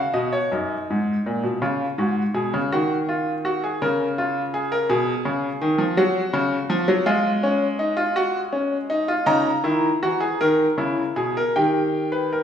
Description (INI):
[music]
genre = classical, baroque-style 3-part fugue for grand piano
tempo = 54 BPM (dotted quarters)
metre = 6/8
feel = straight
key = unclear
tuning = A4 = 441 Hz
[part]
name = bright baby grand piano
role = solo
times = 0.0-12.4 s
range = F#2 to A#5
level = -20 LUFS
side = equal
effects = none
[sound]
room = moderate recital hall reverb, RT60 1.5 s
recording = studio reverb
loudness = -20 LUFS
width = side -8 dB against mid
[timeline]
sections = 0.5-12.4 A section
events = none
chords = 0.5 D#m/F#; 1.6 C#; 2.7 D#madd9; 3.8 A#m/C#; 4.9 G#m/B; 6.0 F#5; 7.1 C#add9/G#; 8.2 D#m; 9.3 A#dim/C#; 11.5 D#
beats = | 0.50 1.61 | 2.72 3.82 | 4.90 5.98 | 7.07 8.17 | 9.27 10.40 | 11.55